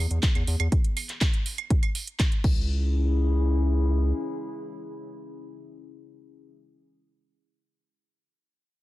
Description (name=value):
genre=melodic techno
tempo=122 BPM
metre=4/4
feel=straight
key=C# minor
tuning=A4 = 436 Hz
part: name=dark analog pad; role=sustained chords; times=0.0-6.5 s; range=E3 to G#4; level=-33 LUFS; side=left 4 dB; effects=lush chorus, sidechain pumping
part: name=round analog bass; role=bass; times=0.0-4.1 s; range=C#2 to E2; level=-23 LUFS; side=equal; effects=sidechain pumping
part: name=house drum kit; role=drums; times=0.1-2.5 s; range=claves, crash cymbal, handclaps, hi-hat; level=-31 LUFS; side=right 3 dB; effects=sidechain pumping on hats, sidechain pumping on perc, sidechain pumping on cymbals
part: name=electronic kick drum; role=drums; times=0.2-2.5 s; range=none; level=-23 LUFS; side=equal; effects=none
room=digital ambience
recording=dense, heavily limited modern master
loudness=-23 LUFS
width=side -17 dB against mid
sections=0.0-2.7 A section; 2.7-6.6 B section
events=drop 0.0-2.7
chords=0.0 E; 2.4 C#m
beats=0.23 | 0.72 1.21 1.70 2.20 | 2.69 3.18 3.67 4.16 | 4.66 5.15 5.64 6.13